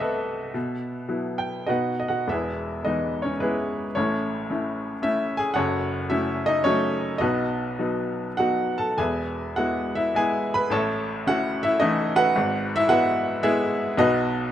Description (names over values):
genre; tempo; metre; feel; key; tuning
classical, lyrical solo piano; 97-115 BPM; 3/4; rubato; E major; A4 = 440 Hz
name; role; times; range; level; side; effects
bright upright piano; solo; 0.0-14.5 s; E1 to B5; -22 LUFS; equal; none
room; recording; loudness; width
light reverb; close, detailed microphones; -22 LUFS; side -11 dB against mid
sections
0.0-2.3 A section; 2.3-14.5 B section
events
upright piano fill 1.1-2.3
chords
0.0 Amadd9/C; 0.6 Bsus4; 1.7 B; 2.3 E; 4.0 A; 5.6 F#m; 7.2 B; 9.0 E; 10.7 A; 12.3 E/G#; 14.0 B